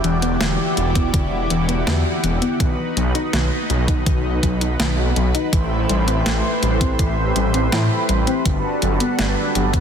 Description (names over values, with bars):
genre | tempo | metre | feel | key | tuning
synthwave | 82 BPM | 4/4 | straight | E minor | A4 = 440 Hz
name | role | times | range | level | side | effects
analog string pad | sustained chords | 0.0-9.8 s | E3 to D5 | -23 LUFS | right 1 dB | ensemble chorus, sidechain pumping
soft round pluck | arpeggios | 0.0-9.8 s | D3 to D#4 | -24 LUFS | left 4 dB | wide subtle chorus, digital delay
wide detuned saw bass | bass | 0.0-9.8 s | E1 to A2 | -21 LUFS | equal | chorus, sidechain pumping
clean 12-bit digital drum machine | drums | 0.0-9.8 s | hi-hat, snare drum | -25 LUFS | equal | overdrive
electronic kick drum | drums | 1.0-9.8 s | none | -19 LUFS | equal | overdrive
room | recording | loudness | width
light reverb, digital ambience | dense, heavily limited modern master | -17 LUFS | side -8 dB against mid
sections
0.0-9.8 A section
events
none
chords
0.0 Em7; 2.6 B; 5.5 Am7; 8.5 Gmaj7